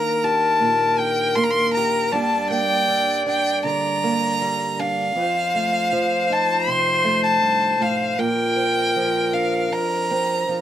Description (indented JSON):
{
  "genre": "acoustic folk-pop ballad",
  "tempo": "79 BPM",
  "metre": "4/4",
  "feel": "straight",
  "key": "Bb major",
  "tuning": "A4 = 440 Hz",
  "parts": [
    { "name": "warm violin", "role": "melody", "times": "0.0-10.6 s", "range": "F5 to C6", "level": "-20 LUFS", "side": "equal", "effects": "none" },
    { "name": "clear clarinet", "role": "second line", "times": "0.0-10.6 s", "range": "Bb4 to D5", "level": "-23 LUFS", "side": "left 3 dB", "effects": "none" },
    { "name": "fingerpicked acoustic archtop guitar", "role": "accompaniment", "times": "0.0-10.6 s", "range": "F2 to G4", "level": "-25 LUFS", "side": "right 4 dB", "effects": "none" }
  ],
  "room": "light reverb",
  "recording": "close, detailed microphones",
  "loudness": "-18 LUFS",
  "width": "side -11 dB against mid",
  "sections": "0.0-10.6 A section",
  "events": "none",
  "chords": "0.0 Ebmaj7; 2.1 Gm; 5.1 F7; 8.2 Bbadd9"
}